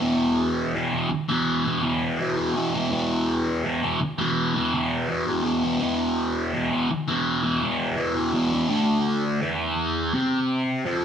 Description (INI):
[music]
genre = rock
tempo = 83 BPM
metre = 4/4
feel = straight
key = unclear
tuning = A4 = 438 Hz
[part]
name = fuzz guitar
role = solo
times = 0.0-11.0 s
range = D2 to C4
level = -22 LUFS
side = equal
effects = distortion, phaser
[sound]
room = wet stone room reverb, RT60 1.1 s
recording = band playing live in one room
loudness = -22 LUFS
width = side -8 dB against mid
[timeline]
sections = 0.0-8.7 A section; 8.7-11.0 B section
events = none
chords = 0.0 E5; 8.7 Dm